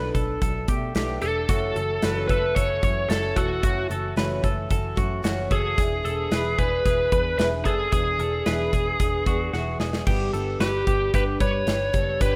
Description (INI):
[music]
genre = jangly indie pop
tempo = 112 BPM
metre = 4/4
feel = straight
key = unclear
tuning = A4 = 440 Hz
[part]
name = picked plugged-in twelve-string acoustic guitar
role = accompaniment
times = 0.0-12.4 s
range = F#2 to A4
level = -34 LUFS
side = equal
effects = none
[part]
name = twelve-string electric guitar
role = arpeggios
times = 0.0-12.4 s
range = F#4 to C#5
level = -34 LUFS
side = equal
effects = none
[part]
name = vintage muted picked electric bass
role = bass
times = 0.0-12.4 s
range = E1 to B2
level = -32 LUFS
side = equal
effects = none
[part]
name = big rock drum kit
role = drums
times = 0.1-12.3 s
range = crash cymbal, hi-hat, kick drum, snare drum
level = -28 LUFS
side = equal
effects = none
[part]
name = biting lead guitar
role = melody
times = 1.2-12.4 s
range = F#4 to C#5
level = -28 LUFS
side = equal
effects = overdrive, delay
[sound]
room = moderate lush hall reverb, RT60 1.9 s, small room ambience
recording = rough home demo mix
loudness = -24 LUFS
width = mono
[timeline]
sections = 0.0-10.1 A section; 10.1-12.4 B section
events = drum fill 9.5-10.1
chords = 0.0 Bm7; 1.5 F#m7; 5.8 E7; 10.1 G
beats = 0.41 0.95 | 1.49 2.03 2.56 3.10 | 3.64 4.17 4.71 5.25 | 5.78 6.32 6.85 7.39 | 7.92 8.46 9.00 9.53 | 10.07 10.60 11.14 11.67 | 12.21